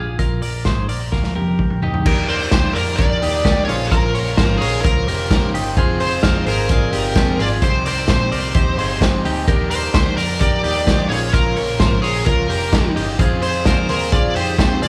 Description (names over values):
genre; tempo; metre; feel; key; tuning
jangly indie pop; 129 BPM; 4/4; straight; Eb major; A4 = 441 Hz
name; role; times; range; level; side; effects
twelve-string electric guitar; arpeggios; 0.0-14.9 s; C4 to D5; -26 LUFS; equal; spring reverb
vintage muted picked electric bass; bass; 0.0-14.9 s; F1 to F2; -27 LUFS; equal; none
vintage drum kit; drums; 0.2-14.9 s; crash cymbal, hi-hat, kick drum, ride cymbal, snare drum, toms; -20 LUFS; equal; none
warm upright piano; accompaniment; 2.0-14.9 s; C4 to Ab5; -30 LUFS; equal; none
biting overdriven guitar; accompaniment; 2.1-14.9 s; Bb2 to C5; -33 LUFS; equal; none
smooth overdriven lead guitar; melody; 2.3-14.9 s; Ab4 to D5; -24 LUFS; equal; none
room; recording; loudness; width
moderate large studio reverb, RT60 1.1 s; band playing live in one room; -17 LUFS; mono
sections
0.0-2.1 A section; 2.1-14.9 B section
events
drum fill 1.1-2.1; upright piano fill 8.6-9.5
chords
0.0 Bb7; 2.1 Ebmaj7; 3.7 Bbmadd9; 5.8 Fm; 7.6 Cm; 9.5 Ebmaj7; 11.1 Bbmadd9; 13.2 Fm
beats
| 0.19 0.66 1.13 1.59 | 2.06 2.52 2.99 3.45 | 3.92 4.38 4.84 5.31 | 5.77 6.23 6.70 7.16 | 7.62 8.09 8.55 9.02 | 9.48 9.94 10.41 10.87 | 11.34 11.80 12.27 12.73 | 13.19 13.66 14.12 14.58